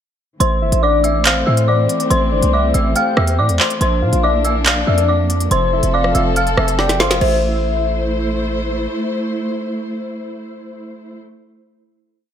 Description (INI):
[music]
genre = hip hop, drill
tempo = 141 BPM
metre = 4/4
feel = half-time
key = A phrygian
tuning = A4 = 440 Hz
[part]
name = dark detuned synth bell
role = melody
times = 0.4-8.4 s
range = C5 to F6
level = -19 LUFS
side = left 2 dB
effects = chorus, ping-pong delay
[part]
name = dark studio string section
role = sustained chords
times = 0.4-11.2 s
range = E3 to C5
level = -23 LUFS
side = left 1 dB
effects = none
[part]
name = hard-hitting 808-style bass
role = bass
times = 0.4-8.9 s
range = F1 to Bb2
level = -18 LUFS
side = right 1 dB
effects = none
[part]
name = drill drum kit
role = drums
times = 0.4-7.3 s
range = crash cymbal, handclaps, hi-hat, rim click, snare drum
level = -19 LUFS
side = right 1 dB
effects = gated reverb
[part]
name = soft octave-layered synth lead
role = second line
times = 0.6-8.4 s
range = C5 to A5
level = -22 LUFS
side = left 2 dB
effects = chorus, phaser, ping-pong delay
[sound]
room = light reverb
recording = bright 1980s-style digital production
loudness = -14 LUFS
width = side -9 dB against mid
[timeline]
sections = 0.4-7.2 hook; 7.2-10.6 final chord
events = drum fill 6.8-7.2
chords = 0.4 Am; 3.8 Bb; 5.5 F; 7.2 Am